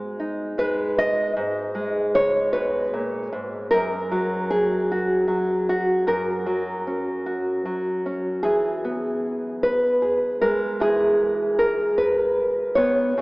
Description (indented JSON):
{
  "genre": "folk, solo fingerstyle acoustic guitar",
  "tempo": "51 BPM (dotted quarters)",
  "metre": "6/8",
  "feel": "straight",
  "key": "unclear",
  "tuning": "A4 = 440 Hz",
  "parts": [
    { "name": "nylon-string guitar", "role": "solo", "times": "0.0-13.2 s", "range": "F#2 to D#5", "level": "-20 LUFS", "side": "equal", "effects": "none" }
  ],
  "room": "wet cathedral reverb, RT60 5.2 s",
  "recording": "in a vast, echoing space, AM radio sound",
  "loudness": "-20 LUFS",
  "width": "side -23 dB against mid",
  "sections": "0.0-8.4 A section; 8.4-13.2 B section",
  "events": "none",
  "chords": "0.0 G#m; 3.7 F#; 8.4 E",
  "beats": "0.18 | 1.36 2.54 | 3.72 4.90 | 6.08 7.26 | 8.45 9.63 | 10.81 11.99 | 13.18"
}